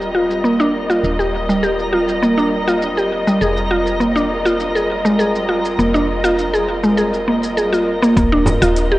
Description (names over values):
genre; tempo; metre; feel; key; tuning
organic downtempo; 101 BPM; 4/4; straight; unclear; A4 = 440 Hz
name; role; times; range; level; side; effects
muted studio string section; sustained chords; 0.0-9.0 s; G3 to Eb5; -21 LUFS; equal; sidechain pumping
woody FM bass; bass; 0.0-9.0 s; Eb1 to F1; -25 LUFS; equal; tube saturation
electronic shaker and hi-hat; drums; 0.0-8.9 s; none; -34 LUFS; equal; low-pass filter on hats, low-pass filter on perc, low-pass filter on snare
twinkling granular texture; texture; 0.0-8.2 s; Bb4; -27 LUFS; right 2 dB; built-in reverb
mallet-like synth pluck; arpeggios; 0.1-9.0 s; G3 to Ab4; -16 LUFS; equal; chorus, digital delay
electronic kick drum; drums; 8.2-8.3 s; none; -18 LUFS; equal; none
frame drum; percussion; 8.5-8.6 s; none; -19 LUFS; right 1 dB; none
room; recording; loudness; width
moderate lush hall reverb, RT60 1.6 s; worn, warbling old tape, cassette tape, warbly pitch drift; -14 LUFS; side -17 dB against mid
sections
0.0-8.2 A section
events
none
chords
0.0 Ebmaj7; 3.4 Fm7; 8.2 Ebmaj7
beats
0.45 | 1.04 1.63 2.23 2.82 | 3.42 4.01 4.60 5.20 | 5.79 6.38 6.98 7.57 | 8.17 8.76